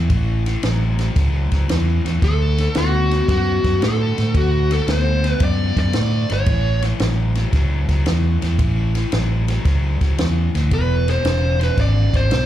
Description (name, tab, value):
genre	electric blues shuffle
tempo	113 BPM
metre	4/4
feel	swing 68% on 8ths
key	A major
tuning	A4 = 445 Hz
part	raw garage guitar	riff	0.0-12.5 s	E2 to B3	-26 LUFS	left 4 dB	overdrive, slapback echo
part	fingered electric bass	bass	0.0-12.5 s	E1 to A2	-18 LUFS	equal	none
part	compact cocktail drum kit	drums	0.1-12.5 s	kick drum, ride cymbal, snare drum	-23 LUFS	equal	none
part	dark smooth lead guitar	melody	2.2-6.8, 10.7-12.5 s	F#4 to D5	-22 LUFS	equal	overdrive, slapback echo, tape echo
room	little or no reverb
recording	live gig heard through the venue's PA, club reverb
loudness	-16 LUFS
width	side -12 dB against mid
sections	0.0-12.5 A section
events	none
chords	0.0 A; 2.2 D; 6.5 A; 10.7 E7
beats	| 0.10 0.63 1.16 1.69 | 2.22 2.75 3.29 3.82 | 4.35 4.88 5.41 5.94 | 6.47 7.00 7.53 8.06 | 8.59 9.12 9.65 10.18 | 10.71 11.24 11.78 12.31